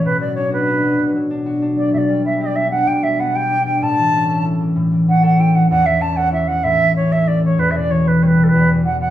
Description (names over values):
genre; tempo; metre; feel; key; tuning
celtic folk; 127 BPM (dotted quarters); 12/8; straight; unclear; A4 = 442 Hz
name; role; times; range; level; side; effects
bright wooden flute; melody; 0.0-9.1 s; A4 to A5; -18 LUFS; right 2 dB; none
concert harp; accompaniment; 0.0-9.1 s; E2 to A4; -16 LUFS; left 1 dB; none
room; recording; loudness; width
wet studio reverb, RT60 0.7 s; heard from further back in the room; -14 LUFS; side -12 dB against mid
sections
0.0-9.1 A section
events
none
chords
0.1 Bm; 1.9 G/B; 3.8 A; 7.6 Em